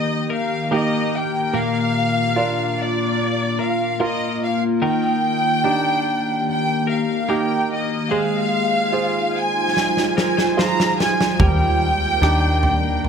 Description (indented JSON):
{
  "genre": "pop ballad",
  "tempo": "73 BPM",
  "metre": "4/4",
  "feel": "straight",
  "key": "Eb major",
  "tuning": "A4 = 438 Hz",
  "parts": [
    { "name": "clear studio violin section", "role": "melody", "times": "0.0-13.1 s", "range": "D5 to Bb5", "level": "-21 LUFS", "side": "equal", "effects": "none" },
    { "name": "clear concert grand piano", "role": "accompaniment", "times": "0.0-13.1 s", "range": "Eb3 to F5", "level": "-25 LUFS", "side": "right 6 dB", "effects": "none" },
    { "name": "glassy FM pad", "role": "sustained chords", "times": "0.0-13.1 s", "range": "Eb3 to D5", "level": "-24 LUFS", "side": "left 2 dB", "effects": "ensemble chorus, built-in reverb" },
    { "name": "twelve-string electric guitar", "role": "arpeggios", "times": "0.0-13.1 s", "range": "Bb2 to C5", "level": "-28 LUFS", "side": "left 7 dB", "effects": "none" },
    { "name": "huge arena drum kit", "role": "drums", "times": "9.8-13.1 s", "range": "kick drum, rim click, snare drum, toms", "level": "-21 LUFS", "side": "right 1 dB", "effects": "none" },
    { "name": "vintage muted fingered electric bass", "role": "bass", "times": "11.4-13.1 s", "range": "Eb2", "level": "-20 LUFS", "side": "equal", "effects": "none" }
  ],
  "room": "light reverb",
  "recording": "none",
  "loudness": "-17 LUFS",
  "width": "side -7 dB against mid",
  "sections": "0.0-13.1 A section",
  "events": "drum fill 9.8-11.4",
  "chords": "0.0 Eb; 1.5 Bb; 4.8 Ebmaj7; 8.1 Ab6; 11.4 Ebmaj7"
}